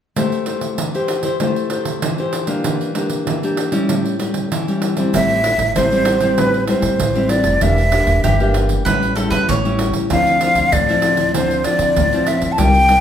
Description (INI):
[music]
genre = samba and choro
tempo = 97 BPM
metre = 4/4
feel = straight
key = A minor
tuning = A4 = 442 Hz
[part]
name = nylon-string guitar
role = accompaniment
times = 0.2-13.0 s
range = A2 to C5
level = -19 LUFS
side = left 2 dB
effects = none
[part]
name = pandeiro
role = percussion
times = 0.2-13.0 s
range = none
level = -23 LUFS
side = right 5 dB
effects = none
[part]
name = breathy hollow jazz flute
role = melody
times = 5.1-13.0 s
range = B4 to A5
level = -16 LUFS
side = equal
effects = none
[part]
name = upright bass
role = bass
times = 5.1-13.0 s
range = E1 to D3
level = -20 LUFS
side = equal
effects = none
[part]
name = mandolin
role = second line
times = 8.2-9.9 s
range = G4 to C#5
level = -21 LUFS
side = right 2 dB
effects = none
[sound]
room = wet large studio reverb, RT60 1.1 s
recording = band playing live in one room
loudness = -14 LUFS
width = side -9 dB against mid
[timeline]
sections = 0.2-5.1 A section; 5.1-13.0 B section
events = none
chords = 0.2 Am7; 2.6 Em7b5; 3.9 A7; 5.1 Am7; 7.6 Em7b5; 8.9 A7; 10.1 Dm9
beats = | 0.16 0.78 1.41 2.03 | 2.65 3.27 3.89 4.51 | 5.13 5.76 6.38 7.00 | 7.62 8.24 8.86 9.48 | 10.10 10.72 11.35 11.97 | 12.59